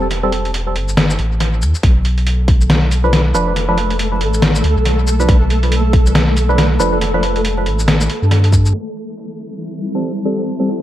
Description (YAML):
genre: deep dubstep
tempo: 139 BPM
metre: 4/4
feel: swing 59% on 16ths, half-time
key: A minor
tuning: A4 = 438 Hz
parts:
  - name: percussive organ stab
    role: stabs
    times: 0.0-0.3, 3.0-7.2, 9.9-10.7 s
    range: F3 to B4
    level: -20 LUFS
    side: right 1 dB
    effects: chorus, phaser, analog delay
  - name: saturated sub bass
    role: bass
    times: 0.0-8.7 s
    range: E1 to G2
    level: -15 LUFS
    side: equal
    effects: none
  - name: trip hop sampler-style drum kit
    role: drums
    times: 0.1-8.7 s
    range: hi-hat, shaker, snare drum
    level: -18 LUFS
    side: equal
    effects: studio reverb, analog delay
  - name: electronic kick drum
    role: drums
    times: 1.8-2.6, 5.3-8.6 s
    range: none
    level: -13 LUFS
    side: equal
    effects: studio reverb
  - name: flickering grainy texture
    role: texture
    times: 2.4-10.8 s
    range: E3 to A4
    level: -22 LUFS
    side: equal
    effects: built-in reverb
  - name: granular cloud pad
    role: sustained chords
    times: 9.5-10.8 s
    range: G3 to A4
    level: -23 LUFS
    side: left 2 dB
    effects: built-in reverb
room: light reverb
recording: echo-heavy mix, vinyl crackle, low-pass filter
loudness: -12 LUFS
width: side -13 dB against mid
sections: 0.0-8.7 A section; 8.7-10.8 B section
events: filter sweep 8.7-10.8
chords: 0.0 A7(no3); 1.8 Bdim; 8.7 Am7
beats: | 0.11 0.54 0.97 1.40 | 1.83 2.27 2.70 3.13 | 3.56 3.99 4.42 4.86 | 5.29 5.72 6.15 6.58 | 7.01 7.45 7.88 8.31 | 8.74 9.17 9.60 10.04 | 10.47